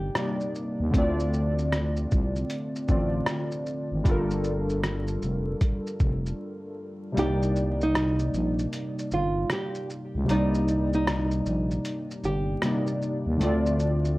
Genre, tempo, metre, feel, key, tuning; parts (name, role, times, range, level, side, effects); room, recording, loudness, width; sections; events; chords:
lo-fi hip hop; 77 BPM; 4/4; swing 64% on 16ths; C dorian; A4 = 440 Hz
nylon-string guitar; melody; 0.0-0.4, 7.2-12.8 s; Eb4 to G4; -30 LUFS; right 2 dB; low-pass filter, analog delay
warbly lo-fi synth keys; accompaniment; 0.0-14.2 s; C3 to D5; -28 LUFS; left 1 dB; chorus, low-pass filter
growling FM bass; bass; 0.0-14.2 s; F1 to Eb2; -27 LUFS; equal
trip hop sampler-style drum kit; drums; 0.1-14.2 s; hi-hat, kick drum, rim click, shaker; -28 LUFS; equal
light reverb; worn, warbling old tape, cassette tape, vinyl crackle, warbly pitch drift; -24 LUFS; side -19 dB against mid
0.0-7.2 A section; 7.2-14.2 B section
break 6.4-7.2; kick muted 7.2-14.2
0.0 Cm9; 0.9 Dm7; 4.1 Gm7; 7.2 Cm9; 13.4 Dm7